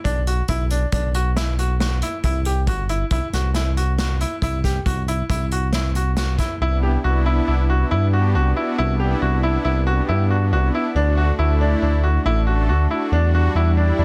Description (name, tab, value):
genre	progressive instrumental, band music in an uneven meter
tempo	138 BPM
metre	5/4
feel	straight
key	unclear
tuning	A4 = 440 Hz
part	bright concert grand piano	arpeggios	0.0-14.0 s	D4 to G4	-27 LUFS	equal	none
part	smooth gliding synth bass	bass	0.1-14.0 s	G1 to G2	-21 LUFS	equal	none
part	unplugged drum kit	drums	0.1-6.5 s	hi-hat, kick drum, snare drum	-28 LUFS	equal	none
part	warm analog pad	accompaniment	6.6-14.0 s	G3 to A4	-27 LUFS	equal	chorus
room	light reverb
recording	dense, heavily limited modern master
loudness	-20 LUFS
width	mono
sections	0.0-6.6 A section; 6.6-14.0 B section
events	none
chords	0.0 Bm; 2.2 C/G; 6.6 Cmaj7; 11.0 D; 13.1 Em7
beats	| 0.05 0.49 0.93 1.36 1.80 | 2.24 2.67 3.11 3.55 3.99 | 4.42 4.86 5.30 5.73 6.17 | 6.61 7.04 7.48 7.91 8.35 | 8.78 9.22 9.65 10.09 10.52 | 10.96 11.39 11.82 12.26 12.69 | 13.12 13.56 13.99